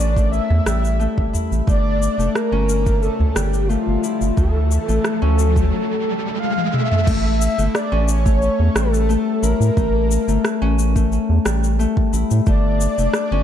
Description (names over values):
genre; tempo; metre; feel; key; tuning
organic downtempo; 89 BPM; 4/4; straight; A phrygian dominant; A4 = 440 Hz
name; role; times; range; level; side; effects
breathy flute-like synth lead; melody; 0.0-13.4 s; F4 to F5; -24 LUFS; equal; ensemble chorus, cassette tape, digital delay
Celtic harp; arpeggios; 0.0-13.4 s; G3 to E4; -23 LUFS; left 6 dB; tape echo
round analog bass; bass; 0.0-13.4 s; F1 to A2; -18 LUFS; equal; none
afro-pop drum kit; drums; 0.2-13.3 s; cabasa, crash cymbal, rim click, toms; -25 LUFS; equal; overdrive
electronic kick drum; drums; 0.2-12.6 s; none; -19 LUFS; right 1 dB; overdrive
udu; percussion; 0.5-3.3 s; none; -23 LUFS; right 2 dB; none
riser; sound effects; 3.1-7.1 s; none; -27 LUFS; right 1 dB; none
room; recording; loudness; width
light reverb, digital ambience; dark, warm production; -16 LUFS; side -10 dB against mid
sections
0.0-7.1 A section; 7.1-13.4 B section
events
riser 3.1-7.1; break 5.7-7.1; drum fill 6.6-7.1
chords
0.0 A7; 1.7 Gm9; 4.4 D5; 7.1 A7b9; 12.5 Gsus2